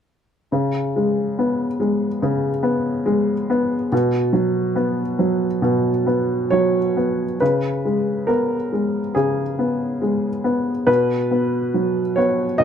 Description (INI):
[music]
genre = neoclassical minimalist piano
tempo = 70 BPM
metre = 4/4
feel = rubato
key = unclear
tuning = A4 = 437 Hz
[part]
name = warm upright piano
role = solo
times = 0.5-12.6 s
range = B2 to D#5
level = -18 LUFS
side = equal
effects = none
[sound]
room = light reverb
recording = close, detailed microphones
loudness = -18 LUFS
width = side -8 dB against mid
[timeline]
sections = 0.5-7.4 A section; 7.4-12.6 B section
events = none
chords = 0.5 C#5; 3.9 Bsus2; 7.4 C#5; 10.9 Bsus2